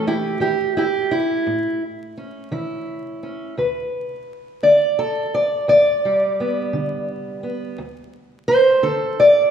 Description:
acoustic country blues, solo or duo; 57 BPM (dotted quarters); 12/8; straight; A4 = 439 Hz
fingerpicked steel-string acoustic guitar; solo; 0.0-9.5 s; D2 to D5; -17 LUFS; equal
wet recital hall reverb, RT60 1.6 s; recorded in a church or concert hall, vinyl crackle; -17 LUFS; side -8 dB against mid
0.0-9.5 A section
steel-string acoustic guitar solo 0.0-9.5
0.0 A; 3.6 G; 7.8 N.C.

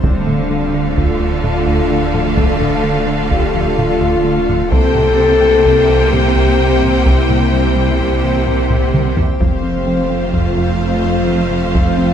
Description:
cinematic, hybrid orchestral and electronic film score; 128 BPM; 5/4; straight; D minor; A4 = 440 Hz
rich symphonic violin section; melody; 0.0-12.1 s; F5 to G5; -24 LUFS; left 5 dB
rich symphonic violin section; second line; 0.0-12.1 s; A4 to C5; -25 LUFS; left 5 dB
rich symphonic viola section; accompaniment; 0.0-12.1 s; A3 to Bb3; -24 LUFS; left 1 dB
granular cloud pad; sustained chords; 0.0-12.1 s; A3 to C5; -22 LUFS; left 1 dB; built-in reverb
mellow French horn section; sustained chords; 0.0-12.1 s; C4 to A4; -18 LUFS; left 3 dB
tight sequenced synth; arpeggios; 0.0-12.1 s; C3 to C4; -26 LUFS; equal
round analog bass; riff; 0.0-12.1 s; C2 to F3; -22 LUFS; right 2 dB
clear symphonic cello section; bass; 0.0-12.1 s; F2 to D3; -21 LUFS; right 4 dB
rich symphonic double bass section; bass; 0.0-12.1 s; F1 to D2; -22 LUFS; right 4 dB
warm sub bass; bass; 0.0-12.1 s; D1 to C2; -22 LUFS; equal
solo taiko drums; drums; 0.0-12.1 s; -19 LUFS; equal
moderate scoring stage reverb, RT60 1.6 s; -12 LUFS; side -8 dB against mid
0.0-12.1 A section
drum fill 8.7-9.4
0.0 Dm; 4.7 C7; 9.4 F

